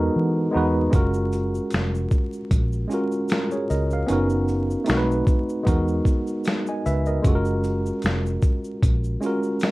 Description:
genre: lo-fi hip hop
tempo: 76 BPM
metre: 4/4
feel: swing 55% on 16ths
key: F# major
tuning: A4 = 440 Hz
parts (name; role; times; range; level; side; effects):
- tine electric piano; accompaniment; 0.0-9.7 s; G#3 to G#5; -23 LUFS; right 1 dB; overdrive, fast stereo tremolo
- vintage muted fingered electric bass; bass; 0.0-9.2 s; E#1 to E3; -24 LUFS; equal; none
- boom bap sampler-style drum kit; drums; 0.9-9.7 s; finger snaps, hi-hat, kick drum, shaker, snare drum; -21 LUFS; equal; none
- tube shaker; percussion; 0.9-9.7 s; none; -51 LUFS; left 3 dB; none
room: light reverb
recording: dark, warm production, vinyl crackle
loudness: -20 LUFS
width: side -20 dB against mid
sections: 0.0-9.7 A section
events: none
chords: 0.0 Emaj9#11; 0.9 F#maj9; 4.1 Bmaj9/F#; 4.9 B7b9; 5.7 Emaj9#11; 7.2 F#maj9

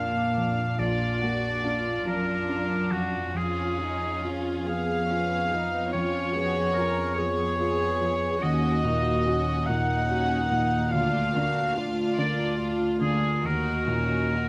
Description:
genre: cinematic, emotional film score for orchestra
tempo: 48 BPM (dotted quarters)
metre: 6/8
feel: rubato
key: Eb minor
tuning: A4 = 440 Hz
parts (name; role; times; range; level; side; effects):
- warm studio violin section; melody; 0.0-14.5 s; Gb4 to Gb5; -38 LUFS; equal; none
- clear oboe; second line; 0.0-14.5 s; Gb4 to Gb5; -31 LUFS; equal; none
- rich studio violin section; second line; 0.0-14.5 s; Bb3 to Ab4; -36 LUFS; equal; none
- dark grand piano; accompaniment; 0.0-14.5 s; Bb1 to Gb4; -33 LUFS; equal; none
- rich studio viola section; accompaniment; 0.0-14.5 s; Db4 to Bb4; -36 LUFS; equal; none
- dark studio cello section; bass; 0.0-14.5 s; D2 to Bb2; -33 LUFS; equal; none
room: moderate scoring stage reverb, RT60 1.6 s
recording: close, detailed microphones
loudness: -26 LUFS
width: mono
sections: 0.0-14.5 A section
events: none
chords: 0.0 Bb; 3.4 Fdim; 8.4 Ebm7; 10.9 Bb/D; 13.4 Ebm7

